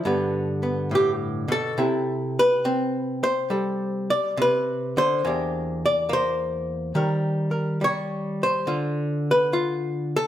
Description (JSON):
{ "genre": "solo jazz", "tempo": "70 BPM", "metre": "4/4", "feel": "swing 67% on 8ths", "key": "unclear", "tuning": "A4 = 440 Hz", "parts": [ { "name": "archtop guitar, miked and amplified", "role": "solo", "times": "0.0-10.3 s", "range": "E2 to D5", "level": "-22 LUFS", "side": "equal", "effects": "none" } ], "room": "moderate stone room reverb, RT60 1.0 s", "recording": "band playing live in one room", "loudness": "-22 LUFS", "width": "side -11 dB against mid", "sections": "0.0-10.3 A section", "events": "none", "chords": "0.0 G; 1.8 C6; 5.2 Em7b5; 6.9 D#7; 8.7 Dm7" }